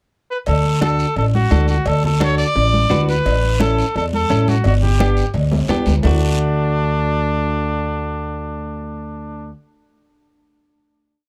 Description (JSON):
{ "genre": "latin, cumbia", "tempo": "172 BPM", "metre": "4/4", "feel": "straight", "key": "D major", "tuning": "A4 = 444 Hz", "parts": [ { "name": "clear trumpet", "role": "melody", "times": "0.3-9.5 s", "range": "D4 to D5", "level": "-24 LUFS", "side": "equal", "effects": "none" }, { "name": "upright bass", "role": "bass", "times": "0.5-9.5 s", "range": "G1 to E2", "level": "-20 LUFS", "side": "equal", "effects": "none" }, { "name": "cowbell and timbales", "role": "percussion", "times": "0.5-6.1 s", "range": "none", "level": "-29 LUFS", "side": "equal", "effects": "none" }, { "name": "guiro", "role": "percussion", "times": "0.5-6.1 s", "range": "none", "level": "-35 LUFS", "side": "equal", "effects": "none" }, { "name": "congas", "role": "percussion", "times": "0.6-6.1 s", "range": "none", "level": "-26 LUFS", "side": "equal", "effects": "none" }, { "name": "direct-recorded clean electric guitar", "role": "accompaniment", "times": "0.8-9.5 s", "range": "A3 to B4", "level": "-25 LUFS", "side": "equal", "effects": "none" } ], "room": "small room ambience", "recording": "dry, close 1970s-style studio recording", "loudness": "-17 LUFS", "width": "mono", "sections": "0.0-0.5 pickup bar; 0.5-6.0 groove; 6.0-8.8 final chord", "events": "drum fill 5.5-6.0", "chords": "0.5 D; 3.3 A; 4.6 G; 6.0 D" }